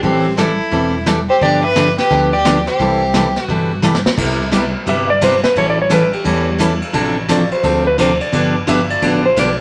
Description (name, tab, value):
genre	country, western swing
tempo	174 BPM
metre	4/4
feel	swing 64% on 8ths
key	C major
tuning	A4 = 442 Hz
part	clean lap steel guitar	melody	0.0-9.6 s	G4 to E5	-20 LUFS	equal	none
part	clear fiddle	second line	0.0-3.8 s	C4 to B4	-20 LUFS	equal	none
part	picked steel-string acoustic guitar	accompaniment	0.0-9.5 s	C3 to A4	-19 LUFS	equal	none
part	fretless electric bass	bass	0.0-9.6 s	E1 to E2	-26 LUFS	equal	none
part	vintage brush drum kit	drums	0.0-9.5 s	brushed snare drum, crash cymbal, hi-hat, kick drum, ride cymbal, snare drum	-23 LUFS	equal	none
room	wet studio reverb, RT60 0.7 s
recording	none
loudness	-15 LUFS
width	mono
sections	0.0-4.2 A section; 4.2-9.6 B section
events	drum fill 3.8-4.2; electric slide guitar solo 4.2-9.6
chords	0.0 Am7; 1.4 G7; 2.8 C6; 4.2 Cmaj7; 5.6 A7; 6.9 Dm7/A; 8.3 G7